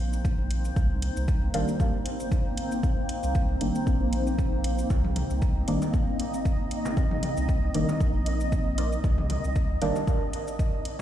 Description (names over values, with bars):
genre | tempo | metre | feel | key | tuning
dub techno | 116 BPM | 4/4 | swing 55% on 16ths | C minor | A4 = 440 Hz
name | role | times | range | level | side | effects
granular cloud pad | sustained chords | 0.0-11.0 s | Bb3 to Eb5 | -32 LUFS | equal | built-in reverb, sidechain pumping
warm sub bass | bass | 0.0-9.9 s | G1 to C2 | -28 LUFS | equal | sidechain pumping
electronic shaker and hi-hat | drums | 0.1-11.0 s | none | -41 LUFS | right 1 dB | none
electronic kick drum | drums | 0.2-10.7 s | none | -26 LUFS | equal | none
deep mellow chord stab | stabs | 1.5-10.0 s | Eb3 to D4 | -31 LUFS | equal | chorus, phaser, sidechain pumping, dub echo
electronic bongos and toms | percussion | 4.9-11.0 s | none | -36 LUFS | left 1 dB | sidechain pumping on perc, sidechain pumping on toms, dub echo
flickering grainy texture | texture | 5.8-11.0 s | Eb5 | -39 LUFS | equal | built-in reverb, sidechain pumping
filtered dub chord stab | riff | 5.7-9.9 s | Eb4 to D5 | -40 LUFS | right 5 dB | phaser, analog chorus, sidechain pumping, dub echo
room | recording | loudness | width
digital ambience | played on a big sound system in a bare room, stone room reverb | -24 LUFS | side -11 dB against mid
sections
0.0-11.0 A section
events
none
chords
0.0 Cm9